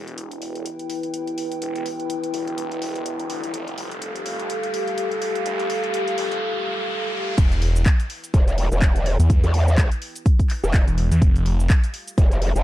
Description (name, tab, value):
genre	bass house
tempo	125 BPM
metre	4/4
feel	swing 57% on 16ths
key	E minor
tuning	A4 = 439 Hz
part	dark analog pad	sustained chords	0.1-12.6 s	E4 to G5	-27 LUFS	equal	chorus, sidechain pumping
part	phased detuned saw bass	bass	0.0-11.7 s	E1 to E2	-23 LUFS	equal	phaser, tube saturation, sidechain pumping, high-pass filter
part	riser	sound effects	0.9-7.4 s	none	-32 LUFS	equal	none
part	house drum kit	drums	0.1-12.6 s	cabasa, crash cymbal, handclaps, hi-hat	-32 LUFS	left 1 dB	high-pass filter on hats, high-pass filter on snare, high-pass filter on cymbals, high-pass filter on perc
part	electronic kick drum	drums	7.4-12.3 s	none	-17 LUFS	equal	none
part	growl bass	bass	8.3-12.6 s	E1 to E2	-20 LUFS	equal	chorus, tube saturation, sidechain pumping
room	light reverb, digital ambience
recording	dark, warm production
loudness	-19 LUFS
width	side -15 dB against mid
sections	0.0-7.4 A section; 7.4-12.6 B section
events	build-up 0.0-7.4; riser 0.9-7.4; drop 7.4-12.6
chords	0.0 Em; 3.5 Fadd9; 7.4 Em; 11.2 Fadd9